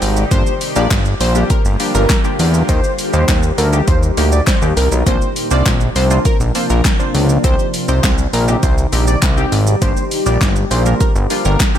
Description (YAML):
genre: dance-pop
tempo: 101 BPM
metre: 4/4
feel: straight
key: G minor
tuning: A4 = 440 Hz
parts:
  - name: funky polysynth comp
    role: accompaniment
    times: 0.0-11.8 s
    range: F3 to C5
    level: -23 LUFS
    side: right 1 dB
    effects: chorus, sidechain pumping
  - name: shimmering ambient pad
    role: sustained chords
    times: 0.0-11.8 s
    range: Bb2 to G4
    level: -22 LUFS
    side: left 1 dB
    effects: chorus, built-in reverb, sidechain pumping
  - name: fat analog bass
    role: bass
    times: 0.0-11.6 s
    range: G1 to E2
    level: -15 LUFS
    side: equal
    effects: sidechain pumping
  - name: deep house drum kit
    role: drums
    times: 0.0-11.8 s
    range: handclaps, hi-hat, kick drum, shaker, snare drum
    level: -16 LUFS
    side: equal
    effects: overdrive
  - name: plucky unison lead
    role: melody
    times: 0.3-11.7 s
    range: Bb4 to D5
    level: -22 LUFS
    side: left 1 dB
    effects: sidechain pumping, diffuse ambient delay
  - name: group handclap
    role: percussion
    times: 0.9-11.7 s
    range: none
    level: -31 LUFS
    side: left 7 dB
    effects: none
room: light reverb, digital ambience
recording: none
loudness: -12 LUFS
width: side -10 dB against mid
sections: 0.0-11.8 A section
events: none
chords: 0.3 Gm7; 2.7 Eb; 5.1 Bbadd9; 7.4 Cm; 9.8 Gm7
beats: | 0.31 0.91 1.50 2.10 | 2.69 3.28 3.88 4.47 | 5.07 5.66 6.25 6.85 | 7.44 8.04 8.63 9.22 | 9.82 10.41 11.01 11.60